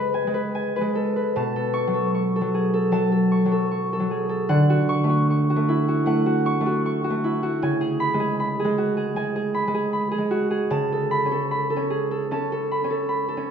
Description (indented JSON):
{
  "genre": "classical, solo harp piece",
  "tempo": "76 BPM",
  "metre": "4/4",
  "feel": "rubato",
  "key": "unclear",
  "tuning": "A4 = 442 Hz",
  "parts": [
    { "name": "concert harp", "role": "solo", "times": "0.0-13.5 s", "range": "B2 to C#6", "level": "-20 LUFS", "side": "equal", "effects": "none" }
  ],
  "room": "wet recital hall reverb, RT60 1.8 s",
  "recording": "recorded in a church or concert hall",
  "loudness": "-20 LUFS",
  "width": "side -7 dB against mid",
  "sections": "0.0-13.5 A section",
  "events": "none",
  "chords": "0.0 C#5; 1.3 Bsus2; 4.5 Dmaj9; 7.6 C#5; 10.7 Amaj9/C#",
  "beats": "0.54 | 1.35 2.13 2.92 3.73 | 4.51 5.29 6.06 6.84 | 7.62 8.39 9.16 9.92 | 10.72 11.52 12.30 13.09"
}